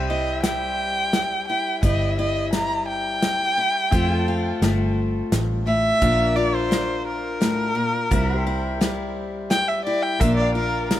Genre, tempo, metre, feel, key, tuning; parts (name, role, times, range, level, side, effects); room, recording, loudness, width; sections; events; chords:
honky-tonk and classic country; 86 BPM; 3/4; straight; C mixolydian; A4 = 440 Hz
picked steel-string acoustic guitar; accompaniment; 0.0-11.0 s; F2 to F4; -26 LUFS; left 3 dB
pedal steel guitar; sustained chords; 0.0-11.0 s; E4 to F5; -32 LUFS; left 1 dB
vintage muted fingered electric bass; bass; 0.0-11.0 s; G1 to F2; -26 LUFS; equal
rich erhu; melody; 0.1-10.9 s; Bb4 to Bb5; -23 LUFS; equal; tape echo
natural country drum kit; drums; 0.4-11.0 s; hi-hat, kick drum, snare drum; -24 LUFS; equal
light reverb; -19 LUFS; side -12 dB against mid
0.0-11.0 A section
erhu solo 0.0-11.0
0.0 C; 3.9 F; 6.0 Bb; 8.1 C; 10.2 Bb